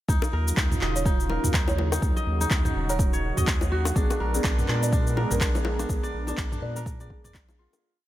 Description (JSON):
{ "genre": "afro house", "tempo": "124 BPM", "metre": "4/4", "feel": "swing 59% on 16ths", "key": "Eb minor", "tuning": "A4 = 444 Hz", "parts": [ { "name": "warm analog pad", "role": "sustained chords", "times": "0.4-7.8 s", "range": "Db3 to Bb4", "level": "-33 LUFS", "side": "right 1 dB", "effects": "chorus, sidechain pumping" }, { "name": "kora", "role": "arpeggios", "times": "0.1-8.1 s", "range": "D4 to Eb5", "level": "-33 LUFS", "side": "equal", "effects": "sidechain pumping, diffuse ambient delay" }, { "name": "warm sub bass", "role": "bass", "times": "0.1-7.7 s", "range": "Eb1 to Bb2", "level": "-28 LUFS", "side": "equal", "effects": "sidechain pumping" }, { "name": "deep house drum kit", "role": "drums", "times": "0.1-7.8 s", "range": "cabasa, handclaps, toms", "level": "-31 LUFS", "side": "equal", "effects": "none" }, { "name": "electronic kick drum", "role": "drums", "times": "0.1-7.5 s", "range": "none", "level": "-25 LUFS", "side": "equal", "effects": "overdrive" }, { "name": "bongos", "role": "percussion", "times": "0.2-7.8 s", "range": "none", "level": "-35 LUFS", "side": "left 4 dB", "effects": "none" }, { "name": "folk marimba with medium mallets", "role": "melody", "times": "1.0-7.0 s", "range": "Bb4 to D5", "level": "-37 LUFS", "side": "right 3 dB", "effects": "diffuse ambient delay" }, { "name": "felt-muted upright piano", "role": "stabs", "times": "4.0-7.8 s", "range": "Cb4 to Bb4", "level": "-34 LUFS", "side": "equal", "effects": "lush chorus, sidechain pumping, diffuse ambient delay" } ], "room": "light reverb, studio reverb", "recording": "none", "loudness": "-22 LUFS", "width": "side -14 dB against mid", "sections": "0.1-7.8 groove", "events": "fade-out 5.2-7.8", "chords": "0.1 Ebm9; 4.0 Bb7b9", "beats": "| 0.09 0.57 1.05 1.54 | 2.02 2.51 2.99 3.47 | 3.96 4.44 4.93 5.41 | 5.89 6.38 6.86 7.34" }